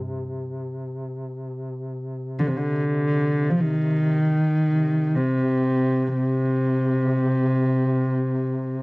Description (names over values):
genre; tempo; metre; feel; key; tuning
caucasian folk, Caucasian lament; free time; none; none; C minor; A4 = 440 Hz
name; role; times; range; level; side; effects
mellow duduk; drone; 0.0-8.8 s; C3; -30 LUFS; equal; none
warm cello; melody; 2.4-8.8 s; C3 to F3; -20 LUFS; equal; cassette tape
room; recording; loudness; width
moderate studio reverb, RT60 0.6 s; home recording on cassette; -20 LUFS; side -26 dB against mid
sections
0.0-8.8 A section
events
none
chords
none